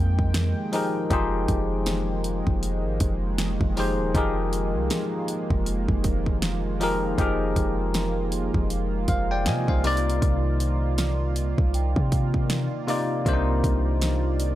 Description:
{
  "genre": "contemporary R&B",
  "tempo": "79 BPM",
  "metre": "4/4",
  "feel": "swing 58% on 16ths",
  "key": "unclear",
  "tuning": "A4 = 441 Hz",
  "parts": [
    { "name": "barky tine electric piano", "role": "accompaniment", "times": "0.0-14.6 s", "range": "C3 to Ab5", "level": "-27 LUFS", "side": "left 2 dB", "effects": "wide subtle chorus" },
    { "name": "chorused pulse-width pad", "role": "sustained chords", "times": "0.0-14.6 s", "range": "Eb3 to G5", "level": "-32 LUFS", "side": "right 4 dB", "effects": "none" },
    { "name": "warm 808-style bass", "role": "bass", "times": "0.0-14.6 s", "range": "Eb1 to C3", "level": "-26 LUFS", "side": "equal", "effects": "none" },
    { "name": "large celesta", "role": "texture", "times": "0.0-0.9, 9.1-13.0 s", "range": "F5 to G5", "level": "-38 LUFS", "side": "right 3 dB", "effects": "analog delay" },
    { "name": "pop drum kit", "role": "drums", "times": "0.2-14.6 s", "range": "hi-hat, kick drum, snare drum", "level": "-27 LUFS", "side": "equal", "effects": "none" }
  ],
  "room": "little or no reverb",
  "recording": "dry, gritty hardware recording",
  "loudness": "-22 LUFS",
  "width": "side -14 dB against mid",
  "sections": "0.0-14.6 A section",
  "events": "none",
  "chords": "0.0 Fm11; 9.8 Cm11",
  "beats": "0.35 | 1.11 1.87 2.63 3.39 | 4.14 4.91 5.66 6.42 | 7.18 7.94 8.70 9.46 | 10.22 10.98 11.74 12.50 | 13.26 14.02"
}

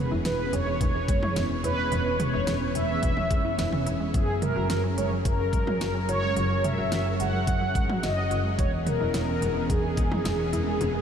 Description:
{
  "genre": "synth-pop",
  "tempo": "108 BPM",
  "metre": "4/4",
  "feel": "straight",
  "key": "unclear",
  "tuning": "A4 = 440 Hz",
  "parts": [
    { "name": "mellow synth brass", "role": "melody", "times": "0.0-11.0 s", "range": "G#4 to F#5", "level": "-28 LUFS", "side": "equal", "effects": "chorus, ping-pong delay, shimmer reverb" },
    { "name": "string machine, violas", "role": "sustained chords", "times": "0.0-11.0 s", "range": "E3 to A#4", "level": "-32 LUFS", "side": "equal", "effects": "ensemble chorus, shimmer reverb" },
    { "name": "resonant blip pluck", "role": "arpeggios", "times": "0.0-11.0 s", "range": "E3 to F#4", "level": "-35 LUFS", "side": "right 3 dB", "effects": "chorus, ping-pong delay, shimmer reverb" },
    { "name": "rich double bass", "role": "bass", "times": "0.1-11.0 s", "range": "E1 to G#1", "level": "-30 LUFS", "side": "equal", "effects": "none" },
    { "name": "pop drum kit", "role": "drums", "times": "0.3-10.9 s", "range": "hi-hat, kick drum, snare drum, toms", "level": "-30 LUFS", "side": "equal", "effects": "none" }
  ],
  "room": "wet huge ambient reverb, RT60 8.0 s",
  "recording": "dreamy mix soaked in reverb",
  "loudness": "-23 LUFS",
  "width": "side -8 dB against mid",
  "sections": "0.0-11.0 A section",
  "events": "drum fill 10.8",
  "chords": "0.0 E6; 4.1 F#add9; 8.6 E6",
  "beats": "0.25 0.81 1.36 | 1.92 2.48 3.03 3.59 | 4.14 4.70 5.25 5.81 | 6.36 6.92 7.47 8.03 | 8.59 9.14 9.70 10.25 | 10.81"
}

